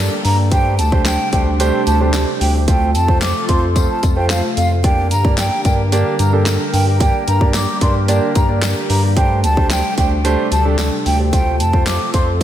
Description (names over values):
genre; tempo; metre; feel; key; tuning
dance-pop; 111 BPM; 4/4; straight; G minor; A4 = 439 Hz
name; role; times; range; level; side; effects
warm grand piano; accompaniment; 0.0-12.4 s; A3 to D5; -21 LUFS; right 3 dB; sidechain pumping, slapback echo
chorused pulse-width pad; sustained chords; 0.0-12.4 s; C3 to Bb4; -24 LUFS; equal; sidechain pumping
round analog bass; bass; 0.0-12.4 s; D2 to G2; -17 LUFS; equal; sidechain pumping
downlifter; sound effects; 0.0-0.5 s; none; barely audible; none; none
breathy mellow concert flute; melody; 0.2-12.3 s; F5 to D6; -21 LUFS; equal; slapback echo, ping-pong delay
pop drum kit; drums; 0.2-12.4 s; handclaps, hi-hat, kick drum, snare drum; -19 LUFS; equal; none
tambourine; percussion; 0.3-12.4 s; none; -32 LUFS; left 9 dB; none
room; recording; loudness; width
moderate lush hall reverb, RT60 2.1 s; big arena sound; -13 LUFS; side -11 dB against mid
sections
0.0-12.4 A section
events
none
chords
0.0 Gm; 0.5 D7sus4; 2.7 F; 4.8 Gm; 9.2 D7sus4; 11.3 F